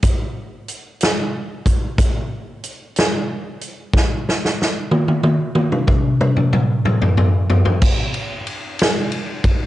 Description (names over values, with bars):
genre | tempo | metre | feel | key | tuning
blues | 62 BPM (dotted quarters) | 12/8 | straight | none | none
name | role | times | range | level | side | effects
swinging big-band drum kit | drums | 0.0-9.6 s | crash cymbal, hi-hat, kick drum, ride cymbal, snare drum, toms | -16 LUFS | equal | cassette tape
room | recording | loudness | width
light reverb | home recording on cassette, nothing above 10.4 kHz | -16 LUFS | side -15 dB against mid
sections
0.0-7.8 A section; 7.8-9.7 B section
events
drum fill 3.9-7.8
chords
none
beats
| 0.03 1.00 1.98 2.96 | 3.93 4.90 5.88 6.85 | 7.82 8.79